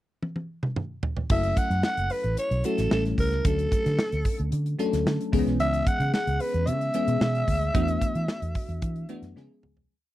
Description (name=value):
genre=polished 1980s jazz-funk pop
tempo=112 BPM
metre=4/4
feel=straight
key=F# minor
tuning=A4 = 440 Hz
part: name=modern studio drum kit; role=drums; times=0.2-9.9 s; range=crash cymbal, hi-hat, kick drum, snare drum, toms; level=-28 LUFS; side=equal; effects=none
part: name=growling alto saxophone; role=melody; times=1.3-9.4 s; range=A4 to F#5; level=-28 LUFS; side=equal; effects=slapback echo
part: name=bell-like FM electric piano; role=accompaniment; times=1.3-9.9 s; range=D#3 to A4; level=-30 LUFS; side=left 2 dB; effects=analog chorus
part: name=vintage muted fingered electric bass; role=bass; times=1.3-9.9 s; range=F#1 to E3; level=-27 LUFS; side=right 1 dB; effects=none
room=little or no reverb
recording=dry, close 1970s-style studio recording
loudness=-23 LUFS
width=side -15 dB against mid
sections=0.0-1.3 pickup bar; 1.3-9.9 verse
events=drum fill 0.2-1.3, 9.4-9.9; fade-out 7.7-9.9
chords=0.0 N.C.; 1.3 F#m7; 2.9 A7; 3.4 Dmaj7; 5.3 C#m7; 7.7 E9sus4; 9.4 C#7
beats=0.22 0.76 | 1.30 1.83 2.37 2.91 | 3.45 3.98 4.52 5.06 | 5.60 6.13 6.67 7.21 | 7.75 8.29 8.82 9.36